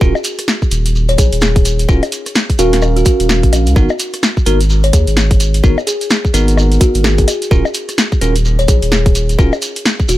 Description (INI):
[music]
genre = UK garage, two-step garage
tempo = 128 BPM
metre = 4/4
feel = swing 60% on 16ths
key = unclear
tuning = A4 = 438 Hz
[part]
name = bell-like tine electric piano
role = stabs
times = 0.0-9.5 s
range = B3 to E#5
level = -19 LUFS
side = right 1 dB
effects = phaser, dub echo
[part]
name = saturated sub bass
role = bass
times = 0.0-10.2 s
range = D#1 to D#2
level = -13 LUFS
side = equal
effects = tube saturation
[part]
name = electronic kick drum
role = drums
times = 0.0-10.1 s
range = none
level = -12 LUFS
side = equal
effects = none
[part]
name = shekere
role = percussion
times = 0.0-10.2 s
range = none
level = -25 LUFS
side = right 2 dB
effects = none
[part]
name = punchy analog drum machine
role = drums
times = 0.2-10.2 s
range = bongos, hi-hat, rim click, snare drum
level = -17 LUFS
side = left 1 dB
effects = none
[part]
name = kalimba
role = melody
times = 1.1-10.2 s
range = F#4 to C#5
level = -20 LUFS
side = left 1 dB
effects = dub echo
[sound]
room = little or no reverb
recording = none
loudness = -10 LUFS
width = side -15 dB against mid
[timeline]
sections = 0.0-10.2 A section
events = none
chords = 0.0 D#m7; 3.8 G#m7; 7.3 D#m7